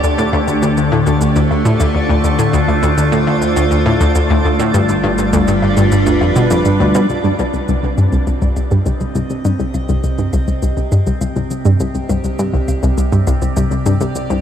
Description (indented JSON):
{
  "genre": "ambient, sequencer-driven space music",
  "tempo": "102 BPM",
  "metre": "4/4",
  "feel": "straight",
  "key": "C minor from 7.1 s",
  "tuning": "A4 = 440 Hz",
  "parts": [
    { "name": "evolving wavetable pad", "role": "sustained chords", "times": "0.0-14.4 s", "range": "C3 to Eb5", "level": "-18 LUFS", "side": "equal", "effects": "phaser, built-in reverb, shimmer reverb" },
    { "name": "analog pluck", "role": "riff", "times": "0.0-14.4 s", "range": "C2 to B2", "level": "-14 LUFS", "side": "equal", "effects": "chorus, cassette tape, ping-pong delay" },
    { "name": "fat analog bass", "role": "bass", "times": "0.0-14.4 s", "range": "G1", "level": "-25 LUFS", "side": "equal", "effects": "none" },
    { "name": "shaker and woodblock", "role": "percussion", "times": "0.0-14.4 s", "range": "none", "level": "-31 LUFS", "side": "right 1 dB", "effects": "ping-pong delay" },
    { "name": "twinkling granular texture", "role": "texture", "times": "0.0-7.1 s", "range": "D4 to D5", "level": "-24 LUFS", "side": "right 1 dB", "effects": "built-in reverb, shimmer reverb" }
  ],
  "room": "moderate huge ambient reverb, RT60 8.1 s",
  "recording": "none",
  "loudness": "-12 LUFS",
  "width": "side -9 dB against mid",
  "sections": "0.0-7.1 A section; 7.1-14.4 B section",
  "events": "fade-in on ambient pad 7.1-14.4; fade-in on drum 7.1-14.4",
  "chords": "0.0 D7sus4; 4.7 G7; 7.1 Cm",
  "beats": "| 0.04 0.62 1.21 1.80 | 2.39 2.98 3.56 4.15 | 4.74 5.33 5.92 6.51 | 7.09 7.68 8.27 8.86 | 9.45 10.04 10.62 11.21 | 11.80 12.39 12.98 13.56 | 14.15"
}